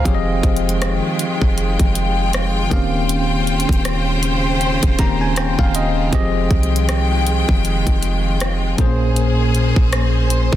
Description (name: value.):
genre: contemporary R&B.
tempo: 79 BPM.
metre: 4/4.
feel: swing 58% on 16ths.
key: F minor.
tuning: A4 = 441 Hz.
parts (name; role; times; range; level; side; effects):
bell-like tine electric piano; accompaniment; 0.0-10.6 s; Bb2 to Bb5; -20 LUFS; left 1 dB; slow stereo tremolo.
clean 808-style bass; bass; 0.0-10.6 s; Eb1 to G2; -20 LUFS; equal; none.
clear studio string section; sustained chords; 0.1-10.6 s; Bb2 to G5; -22 LUFS; left 1 dB; none.
trap drum kit; drums; 0.1-10.6 s; hi-hat, kick drum, rim click; -19 LUFS; equal; soft clipping on snare.
room: little or no reverb.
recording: dense, heavily limited modern master.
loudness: -15 LUFS.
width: side -12 dB against mid.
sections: 0.0-10.6 A section.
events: tine electric piano fill 4.6-6.1.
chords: 0.1 Fm9; 2.7 Eb13; 6.1 Fm9; 8.8 Bbm9.